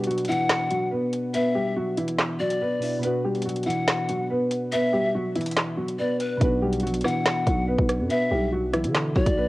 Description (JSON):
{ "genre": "hip hop, drill", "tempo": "142 BPM", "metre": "4/4", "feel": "half-time", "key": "B minor", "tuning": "A4 = 440 Hz", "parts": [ { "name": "dark upright piano", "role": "melody", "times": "0.0-9.5 s", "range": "E3 to B4", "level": "-26 LUFS", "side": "equal", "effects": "low-pass filter, cassette tape" }, { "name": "soft electric-piano-like synth keys", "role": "accompaniment", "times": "0.0-9.5 s", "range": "B2 to F#4", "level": "-31 LUFS", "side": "right 1 dB", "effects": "chorus, low-pass filter, cassette tape" }, { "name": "drill drum kit", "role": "drums", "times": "0.0-9.4 s", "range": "handclaps, hi-hat, kick drum, rim click, snare drum", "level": "-25 LUFS", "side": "equal", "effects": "cassette tape" }, { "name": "breathy pan flute", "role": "second line", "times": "0.3-9.5 s", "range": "B4 to F#5", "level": "-28 LUFS", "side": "left 2 dB", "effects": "cassette tape, analog delay" }, { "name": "growling 808-style bass", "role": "bass", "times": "6.4-9.5 s", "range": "A#1 to D3", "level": "-27 LUFS", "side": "equal", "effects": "none" } ], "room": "light reverb, studio ambience", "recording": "home recording on cassette", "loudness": "-22 LUFS", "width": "side -18 dB against mid", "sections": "0.0-9.5 A section", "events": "break 0.0-6.4", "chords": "0.0 Bm", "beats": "0.07 0.49 0.92 | 1.34 1.76 2.19 2.61 | 3.03 3.45 3.88 4.30 | 4.72 5.14 5.57 5.99 | 6.41 6.83 7.26 7.68 | 8.10 8.52 8.95 9.37" }